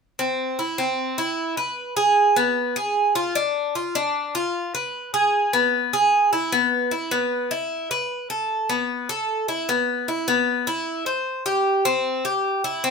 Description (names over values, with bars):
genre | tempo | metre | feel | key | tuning
latin | 152 BPM | 4/4 | straight | unclear | A4 = 439 Hz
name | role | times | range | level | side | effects
Cuban tres | solo | 0.2-12.9 s | Cb4 to C5 | -20 LUFS | equal | none
room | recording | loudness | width
moderate studio reverb, RT60 0.7 s | minimal, uncompressed stereo recording | -20 LUFS | side -5 dB against mid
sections
0.2-12.8 A section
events
none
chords
none